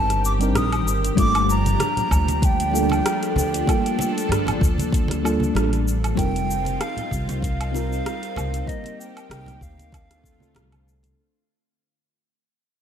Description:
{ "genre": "sunset chillout", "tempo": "96 BPM", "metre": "4/4", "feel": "swing 54% on 16ths", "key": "G minor", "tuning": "A4 = 438 Hz", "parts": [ { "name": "bright baroque flute", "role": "melody", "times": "0.0-10.9 s", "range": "Eb5 to Eb6", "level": "-26 LUFS", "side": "right 1 dB", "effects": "digital delay, slapback echo" }, { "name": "mellow FM electric piano", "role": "accompaniment", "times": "0.0-11.2 s", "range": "G3 to Bb4", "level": "-25 LUFS", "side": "moving between left 5 dB and right 3 dB", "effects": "chorus, phaser, auto-pan" }, { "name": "lush unison pad", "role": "sustained chords", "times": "0.0-11.2 s", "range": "D3 to A4", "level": "-30 LUFS", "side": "equal", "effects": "chorus" }, { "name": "upright bass", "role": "bass", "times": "0.0-11.1 s", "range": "F1 to D2", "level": "-24 LUFS", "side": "equal", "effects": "none" }, { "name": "deep house drum kit", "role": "drums", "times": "0.1-11.2 s", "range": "cabasa, hi-hat, rim click, woodblock", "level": "-30 LUFS", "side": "right 1 dB", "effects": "none" }, { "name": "electronic kick drum", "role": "drums", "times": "1.2-10.4 s", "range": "none", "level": "-22 LUFS", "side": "equal", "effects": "none" }, { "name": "congas", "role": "percussion", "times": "1.2-11.1 s", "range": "none", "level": "-32 LUFS", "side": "right 2 dB", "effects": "none" } ], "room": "moderate lush hall reverb, RT60 1.6 s, small room ambience", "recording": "big arena sound", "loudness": "-19 LUFS", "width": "side -8 dB against mid", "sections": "0.0-11.2 A section", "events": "fade-out 4.5-11.2", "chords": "0.0 Cm7; 1.2 Gm7; 6.2 F7sus4; 8.7 Cm7; 9.9 Dm7" }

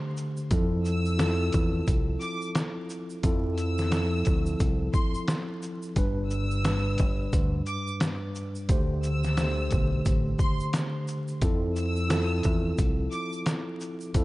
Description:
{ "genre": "hip hop, boom-bap hip-hop", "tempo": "88 BPM", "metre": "4/4", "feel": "swing 60% on 16ths", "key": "unclear", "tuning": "A4 = 440 Hz", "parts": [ { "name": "mellow tine electric piano", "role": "accompaniment", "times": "0.0-14.2 s", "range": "G2 to C5", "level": "-30 LUFS", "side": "equal", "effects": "medium stereo tremolo, cassette tape" }, { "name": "trip hop sampler-style drum kit", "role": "drums", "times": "0.2-14.2 s", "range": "hi-hat, kick drum, shaker, snare drum", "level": "-27 LUFS", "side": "equal", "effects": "none" }, { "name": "tube shaker", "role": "percussion", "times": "0.2-14.2 s", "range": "none", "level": "-49 LUFS", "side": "right 4 dB", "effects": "none" }, { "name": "deep dub fingered electric bass", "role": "bass", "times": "0.5-14.2 s", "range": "G1 to F2", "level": "-29 LUFS", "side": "equal", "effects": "none" }, { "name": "rich studio violin section", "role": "melody", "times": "0.9-13.3 s", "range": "C6 to E6", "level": "-37 LUFS", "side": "equal", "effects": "analog delay" } ], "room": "little or no reverb", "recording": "dark, warm production, vinyl crackle, nothing above 10.4 kHz", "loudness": "-25 LUFS", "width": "side -19 dB against mid", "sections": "0.0-14.2 A section", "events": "none", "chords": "0.0 D7sus4; 0.5 Fmaj7; 6.0 G; 8.7 D7sus4; 11.4 Fmaj7" }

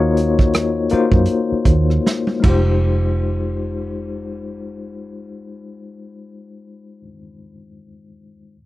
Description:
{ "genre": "R&B, neo-soul", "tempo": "75-83 BPM", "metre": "4/4", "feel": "swing 58% on 16ths", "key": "F minor", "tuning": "A4 = 438 Hz", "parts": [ { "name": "tine electric piano", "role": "accompaniment", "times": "0.0-8.6 s", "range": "Ab3 to Eb5", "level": "-21 LUFS", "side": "left 4 dB", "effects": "fast tremolo" }, { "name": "vintage muted fingered electric bass", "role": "bass", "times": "0.0-7.0 s", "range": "F1 to Gb2", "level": "-19 LUFS", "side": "right 1 dB", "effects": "none" }, { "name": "crunchy breakbeat drum kit", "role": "drums", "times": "0.2-2.7 s", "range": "crash cymbal, hi-hat, kick drum, rim click, snare drum, toms", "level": "-18 LUFS", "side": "right 1 dB", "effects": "none" } ], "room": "little or no reverb", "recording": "dry, close 1970s-style studio recording", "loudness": "-15 LUFS", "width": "side -16 dB against mid", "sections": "0.0-2.8 A section; 2.8-6.0 B section", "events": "slowing down 0.0-2.8; drum fill 2.0-2.8", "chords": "0.0 Ebm9; 2.4 Fm9" }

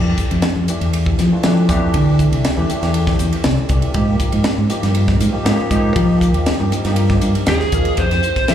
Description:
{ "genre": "electric jazz fusion", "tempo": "119 BPM", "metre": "4/4", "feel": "straight", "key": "unclear", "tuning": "A4 = 440 Hz", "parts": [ { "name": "barky tine electric piano", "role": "accompaniment", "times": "0.0-8.5 s", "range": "E3 to Bb5", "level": "-23 LUFS", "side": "left 2 dB", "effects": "overdrive, ensemble chorus, slapback echo" }, { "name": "fingered electric bass", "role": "bass", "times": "0.0-8.5 s", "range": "C2 to F3", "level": "-16 LUFS", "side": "equal", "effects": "none" }, { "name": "crisp fusion drum kit", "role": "drums", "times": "0.2-8.5 s", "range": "hi-hat, kick drum, ride cymbal, snare drum", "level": "-19 LUFS", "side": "equal", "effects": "none" }, { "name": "lead guitar through a small cranked amp", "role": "melody", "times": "7.5-8.5 s", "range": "Ab4 to F5", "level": "-18 LUFS", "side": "right 2 dB", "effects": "overdrive, slapback echo" } ], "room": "small room reverb", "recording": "live gig heard through the venue's PA, club reverb", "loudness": "-14 LUFS", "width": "side -10 dB against mid", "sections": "0.0-8.0 A section", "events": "tine electric piano fill 2.9-4.0, 7.2-8.0", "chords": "0.0 Fmaj9; 4.0 Absus2; 8.0 Fmaj9" }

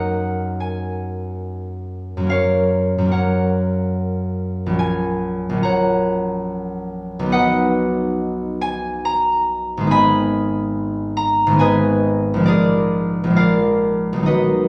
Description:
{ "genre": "classical, solo harp piece", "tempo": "71 BPM", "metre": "3/4", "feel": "uneven beats, rubato", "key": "unclear", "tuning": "A4 = 440 Hz", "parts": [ { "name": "concert harp", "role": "solo", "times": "0.0-14.7 s", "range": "Ab1 to Cb6", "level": "-19 LUFS", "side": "equal", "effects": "none" } ], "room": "wet recital hall reverb, RT60 1.4 s", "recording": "heard from further back in the room, studio ambience", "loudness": "-19 LUFS", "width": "mono", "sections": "0.0-14.7 A section", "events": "none", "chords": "0.0 Ebm/Gb; 2.3 Gb; 4.8 Gb/Bb; 7.3 B; 9.9 Abm; 12.5 Bb7" }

